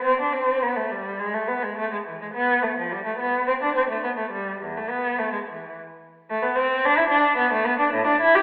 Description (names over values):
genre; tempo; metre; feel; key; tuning
classical, baroque-style suite movement for unaccompanied cello; 107 BPM; 3/4; uneven beats, rubato; A minor; A4 = 440 Hz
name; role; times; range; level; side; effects
rich cello; solo; 0.0-8.4 s; E2 to G4; -23 LUFS; equal; none
room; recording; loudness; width
wet recital hall reverb, RT60 1.6 s; heard from further back in the room, telephone sound; -23 LUFS; mono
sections
0.0-8.4 A section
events
none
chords
none